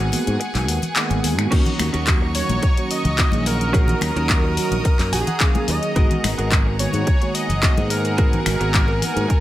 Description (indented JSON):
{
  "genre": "nu-disco, nu disco",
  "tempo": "108 BPM",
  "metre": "4/4",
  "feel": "straight",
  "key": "Eb minor",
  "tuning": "A4 = 441 Hz",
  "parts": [
    { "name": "mellow synth brass", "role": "accompaniment", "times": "0.0-9.3 s", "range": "Eb3 to Bb4", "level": "-25 LUFS", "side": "right 1 dB", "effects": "chorus, diffuse ambient delay" },
    { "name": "clear chamber violin section", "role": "sustained chords", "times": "0.0-9.4 s", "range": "Gb4 to Eb6", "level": "-30 LUFS", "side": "equal", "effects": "sidechain pumping" },
    { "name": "direct-recorded clean electric guitar", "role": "riff", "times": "0.0-9.3 s", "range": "Cb4 to Ab5", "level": "-30 LUFS", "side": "right 2 dB", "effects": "analog chorus, diffuse ambient delay" },
    { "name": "modern bright fingered electric bass", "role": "bass", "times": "0.0-9.2 s", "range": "Gb1 to Ab2", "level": "-23 LUFS", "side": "equal", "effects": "none" },
    { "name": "house drum kit", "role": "drums", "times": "0.0-9.4 s", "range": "crash cymbal, finger snaps, handclaps, hi-hat", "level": "-24 LUFS", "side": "left 1 dB", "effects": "none" },
    { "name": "bongos and congas", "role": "percussion", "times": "0.0-9.3 s", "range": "none", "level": "-28 LUFS", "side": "left 2 dB", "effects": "none" },
    { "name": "electronic kick drum", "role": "drums", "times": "1.5-9.4 s", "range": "none", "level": "-18 LUFS", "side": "equal", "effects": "none" },
    { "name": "wide unison lead", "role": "melody", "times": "2.4-9.4 s", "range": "Ab4 to Eb5", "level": "-26 LUFS", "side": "equal", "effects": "diffuse ambient delay" }
  ],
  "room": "light reverb, digital ambience",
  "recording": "none",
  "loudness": "-17 LUFS",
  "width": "side -14 dB against mid",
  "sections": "0.0-9.4 A section",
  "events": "break 0.0-1.5; clean electric guitar fill 4.9-6.0",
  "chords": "0.0 Abm9; 1.5 Ebm7; 6.0 Abm9",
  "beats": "0.41 0.96 | 1.52 2.07 2.63 3.19 | 3.74 4.30 4.85 5.41 | 5.96 6.52 7.07 7.63 | 8.19 8.74 9.30"
}